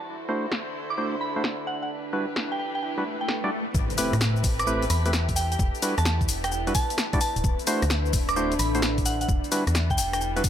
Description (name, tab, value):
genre	UK garage, two-step garage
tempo	130 BPM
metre	4/4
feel	swing 67% on 16ths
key	E minor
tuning	A4 = 440 Hz
part	soft synth bell	melody	0.0-10.3 s	F#5 to D6	-31 LUFS	right 2 dB	chorus, ping-pong delay
part	muted studio violin section	sustained chords	0.0-10.5 s	G3 to C5	-36 LUFS	equal	sidechain pumping
part	deep dark ambient pad	texture	0.0-10.5 s	D4 to B5	-34 LUFS	equal	chorus, built-in reverb, sidechain pumping
part	percussive organ stab	stabs	0.3-10.4 s	G3 to D5	-30 LUFS	equal	chorus, ping-pong delay
part	punchy analog drum machine	drums	0.5-10.5 s	cabasa, hi-hat, rim click, snare drum	-28 LUFS	left 2 dB	overdrive, low-pass filter on hats, low-pass filter on perc, low-pass filter on snare
part	swell and impact	sound effects	3.0-5.6 s	none	-35 LUFS	equal	none
part	organ-like FM bass	bass	3.7-10.5 s	D1 to A2	-26 LUFS	equal	none
part	electronic kick drum	drums	3.7-10.5 s	none	-26 LUFS	equal	none
room	light reverb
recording	none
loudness	-23 LUFS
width	side -10 dB against mid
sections	0.0-3.7 A section; 3.7-10.5 B section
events	swell 3.0-3.7; drop 3.7-10.5; impact 3.7-5.6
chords	0.1 D7; 1.9 Em7; 3.7 Am9; 5.6 Em7; 7.4 D7; 9.3 Em7